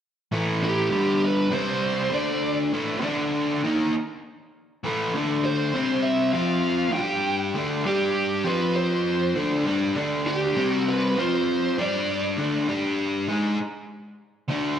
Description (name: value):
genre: rock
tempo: 99 BPM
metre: 4/4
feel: straight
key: unclear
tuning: A4 = 440 Hz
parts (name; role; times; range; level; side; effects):
- overdriven electric guitar; riff; 0.3-14.8 s; G2 to G#4; -23 LUFS; left 1 dB; slapback echo
- bluesy overdriven lead guitar; melody; 0.6-12.2 s; G4 to G5; -27 LUFS; right 2 dB; distortion, slapback echo
room: wet scoring stage reverb, RT60 1.7 s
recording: big arena sound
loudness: -22 LUFS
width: side -9 dB against mid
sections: 0.3-14.8 A section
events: none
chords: 0.3 A5; 0.9 G5; 1.5 C5; 2.1 D5; 2.7 A5; 3.0 D5; 3.6 A5; 5.1 D5; 5.7 C5; 6.3 F5; 6.9 G5; 7.6 D5; 7.9 G5; 8.5 F5; 9.4 D5; 10.6 C5; 11.2 F5; 11.8 G5; 12.4 D5; 12.7 G5; 13.3 D5